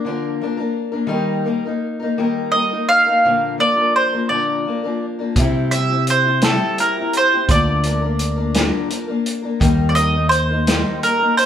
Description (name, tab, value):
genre	folk rock and heartland rock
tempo	56 BPM (dotted quarters)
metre	6/8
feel	straight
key	unclear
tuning	A4 = 439 Hz
part	mandolin	melody	0.0-11.5 s	A4 to F5	-17 LUFS	right 2 dB	none
part	picked old ladder-braced acoustic guitar	accompaniment	0.0-11.5 s	Bb2 to Bb4	-22 LUFS	left 4 dB	none
part	fingered electric bass	bass	5.4-10.8 s	D2 to C3	-19 LUFS	equal	none
part	vintage drum kit	drums	5.4-11.5 s	hi-hat, kick drum, snare drum	-20 LUFS	equal	none
room	moderate large studio reverb, RT60 1.0 s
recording	band playing live in one room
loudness	-15 LUFS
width	side -9 dB against mid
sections	0.0-11.5 A section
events	none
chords	0.0 Bb/D; 1.1 Eb; 3.2 Bb; 5.4 C; 7.5 Bb/D; 9.6 Eb